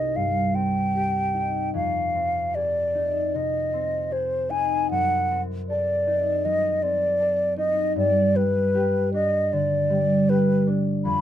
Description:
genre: classical, romantic duo for flute and harp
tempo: 77 BPM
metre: 4/4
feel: rubato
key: unclear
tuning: A4 = 438 Hz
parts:
  - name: mellow hollow silver concert flute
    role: melody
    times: 0.0-11.2 s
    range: B4 to B5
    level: -22 LUFS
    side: equal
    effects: none
  - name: concert harp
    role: accompaniment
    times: 0.0-11.2 s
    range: C2 to A4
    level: -25 LUFS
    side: equal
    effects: none
room: little or no reverb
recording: close, detailed microphones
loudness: -21 LUFS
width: side -11 dB against mid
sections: 0.0-11.2 A section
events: none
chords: 0.0 Cm; 1.7 Fm7; 4.9 F#dim7; 8.0 G

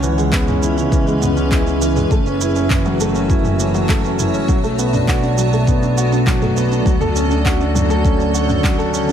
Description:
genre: piano and strings electronica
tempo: 101 BPM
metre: 4/4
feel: straight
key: F# minor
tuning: A4 = 440 Hz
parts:
  - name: granular cloud pad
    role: sustained chords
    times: 0.0-9.1 s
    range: D3 to A5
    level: -23 LUFS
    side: equal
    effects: built-in reverb, sidechain pumping
  - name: felt-muted upright piano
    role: riff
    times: 0.0-9.1 s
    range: E3 to A4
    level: -18 LUFS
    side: equal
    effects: ping-pong delay
  - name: muted studio double bass section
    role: bass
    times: 0.0-9.1 s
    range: F#1 to D2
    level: -20 LUFS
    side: equal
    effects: sidechain pumping
  - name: deep house drum kit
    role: drums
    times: 0.0-9.1 s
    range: handclaps, shaker, toms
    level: -24 LUFS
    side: right 1 dB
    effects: none
  - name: electronic kick drum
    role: drums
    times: 0.3-8.8 s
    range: none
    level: -17 LUFS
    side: equal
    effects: none
room: light reverb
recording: none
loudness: -14 LUFS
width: side -9 dB against mid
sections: 0.0-9.1 A section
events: none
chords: 0.0 C#m7; 2.1 F#m7; 4.5 Bm7; 6.9 Dmaj7

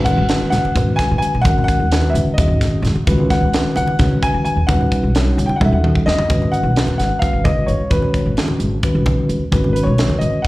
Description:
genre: electric jazz fusion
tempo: 260 BPM (eighths)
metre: 7/8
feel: straight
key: G# minor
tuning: A4 = 440 Hz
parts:
  - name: clear baby grand piano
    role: melody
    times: 0.0-10.5 s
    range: B4 to G#5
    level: -21 LUFS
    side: left 1 dB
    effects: slapback echo
  - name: mellow tine electric piano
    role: accompaniment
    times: 0.0-10.5 s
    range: D#3 to C#5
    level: -20 LUFS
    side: left 1 dB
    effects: fast stereo tremolo
  - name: upright bass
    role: bass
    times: 0.0-10.5 s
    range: G#1 to C#3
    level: -19 LUFS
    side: equal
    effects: none
  - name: crisp fusion drum kit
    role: drums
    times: 0.1-10.5 s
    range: hi-hat, kick drum, snare drum, toms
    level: -20 LUFS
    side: equal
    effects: none
  - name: congas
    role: percussion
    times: 0.1-10.3 s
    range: none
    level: -24 LUFS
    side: right 1 dB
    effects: none
room: light reverb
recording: live gig heard through the venue's PA, club reverb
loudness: -14 LUFS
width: side -18 dB against mid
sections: 0.0-6.3 A section; 6.3-10.5 B section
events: drum fill 5.6-6.3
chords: 0.0 G#m9; 3.1 C#7sus2; 4.7 D#7alt; 6.3 G#m7

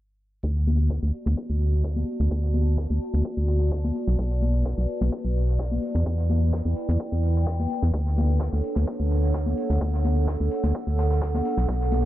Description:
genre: piano house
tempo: 128 BPM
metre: 4/4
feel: swing 53% on 16ths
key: D major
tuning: A4 = 440 Hz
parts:
  - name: organ-like FM bass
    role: bass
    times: 0.4-12.1 s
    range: B1 to E2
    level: -22 LUFS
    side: equal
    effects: tube saturation, sidechain pumping
  - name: electronic kick drum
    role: drums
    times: 0.4-11.8 s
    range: none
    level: -39 LUFS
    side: equal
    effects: high-pass filter on kick, studio reverb
  - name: open jazz drum kit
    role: drums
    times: 0.4-12.0 s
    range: hi-hat, snare drum, tambourine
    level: -46 LUFS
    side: left 2 dB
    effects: sidechain pumping on hats, high-pass filter on hats, studio reverb, high-pass filter on snare, sidechain pumping on perc, high-pass filter on perc, high-pass filter on room, dub echo
  - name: tambourine and congas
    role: percussion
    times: 0.4-12.0 s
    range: none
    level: -32 LUFS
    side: left 4 dB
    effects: dub echo
  - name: warbly tape-like pad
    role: texture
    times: 0.4-12.1 s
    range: D4 to A5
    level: -31 LUFS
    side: right 2 dB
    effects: chorus, built-in reverb, sidechain pumping
  - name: electronic hi-hat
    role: drums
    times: 0.7-12.0 s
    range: none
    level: -62 LUFS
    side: right 2 dB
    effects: none
room: light reverb, studio reverb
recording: echo-heavy mix, low-pass filter, faint mains hum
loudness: -22 LUFS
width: side -14 dB against mid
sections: 0.4-12.1 A section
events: filter sweep on FM bass 0.4-12.1; filter sweep 0.4-12.1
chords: 0.4 D; 4.0 Bm7; 5.8 Em7; 7.9 Dmaj7; 11.5 Bm7

